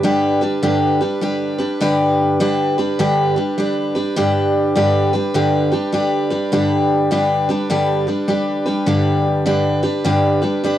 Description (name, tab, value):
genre	country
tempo	102 BPM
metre	4/4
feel	swing 64% on 8ths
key	G major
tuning	A4 = 444 Hz
part	picked steel-string acoustic guitar	solo	0.0-10.8 s	G2 to B4	-15 LUFS	equal	cassette tape, analog delay
room	moderate booth ambience, RT60 0.3 s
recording	home recording on cassette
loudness	-15 LUFS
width	side -12 dB against mid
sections	0.0-10.8 A section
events	none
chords	0.0 G